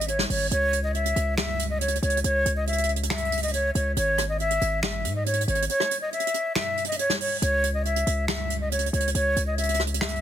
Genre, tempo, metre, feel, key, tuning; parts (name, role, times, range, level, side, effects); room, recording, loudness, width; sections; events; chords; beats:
hip hop, trap; 139 BPM; 4/4; half-time; C# minor; A4 = 440 Hz
breathy concert flute; melody; 0.0-10.2 s; C#5 to E5; -25 LUFS; equal; ping-pong delay
distorted 808-style bass; bass; 0.0-10.2 s; G#1 to G#2; -27 LUFS; equal; distortion
jazz brush drum kit; drums; 0.0-10.2 s; finger snaps, hi-hat, rim click, snare drum; -28 LUFS; right 3 dB
studio ambience; dense, heavily limited modern master; -22 LUFS; side -10 dB against mid
0.5-10.2 A section
kick muted 5.7-7.4
0.0 C#5/G#; 0.5 C#m; 4.0 C#m/G#; 7.4 C#m
0.08 | 0.51 0.94 1.38 1.81 | 2.24 2.67 3.10 3.54 | 3.97 4.40 4.83 5.26 | 5.69 6.12 6.56 6.99 | 7.42 7.85 8.28 8.71 | 9.15 9.58 10.01